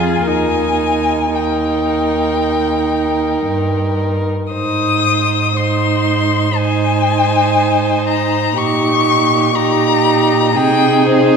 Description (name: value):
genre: classical, slow romantic movement for string quartet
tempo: 55-61 BPM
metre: 4/4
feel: rubato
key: Ab major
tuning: A4 = 441 Hz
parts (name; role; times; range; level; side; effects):
- rich violin; melody; 0.0-11.4 s; C5 to Eb6; -17 LUFS; left 6 dB; none
- warm violin; second line; 0.0-11.4 s; G4 to C5; -20 LUFS; left 2 dB; none
- rich viola; accompaniment; 0.0-11.4 s; Eb4 to F4; -18 LUFS; right 5 dB; none
- rich cello; bass; 0.0-11.4 s; Eb2 to C3; -19 LUFS; right 4 dB; none
room: wet concert hall reverb, RT60 2.5 s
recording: none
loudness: -13 LUFS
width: side -6 dB against mid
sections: 0.0-11.4 A section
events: none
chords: 0.3 Eb; 4.5 Ab; 8.6 Eb7/Bb; 10.6 Ab/C